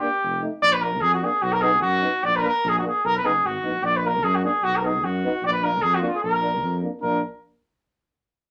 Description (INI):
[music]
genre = balkan folk, Balkan brass band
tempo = 150 BPM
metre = 2/4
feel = swing 54% on 16ths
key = Bb phrygian dominant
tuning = A4 = 443 Hz
[part]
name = mellow trumpet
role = melody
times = 0.0-7.2 s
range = F4 to D5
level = -23 LUFS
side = equal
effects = none
[part]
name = clear euphonium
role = accompaniment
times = 0.0-7.2 s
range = D4 to Eb4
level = -34 LUFS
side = equal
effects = none
[part]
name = warm euphonium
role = accompaniment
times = 0.0-7.2 s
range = A3 to B3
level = -34 LUFS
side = equal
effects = none
[part]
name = mellow tuba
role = bass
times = 0.2-7.2 s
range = F1 to Gb2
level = -31 LUFS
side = equal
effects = none
[sound]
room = moderate studio ambience, RT60 0.5 s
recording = none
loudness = -22 LUFS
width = mono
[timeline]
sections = 0.6-7.0 A section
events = none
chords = 0.2 F7; 0.6 Bb; 1.4 B; 2.2 Bb; 3.0 B; 3.8 Bb; 4.6 B; 5.4 Bb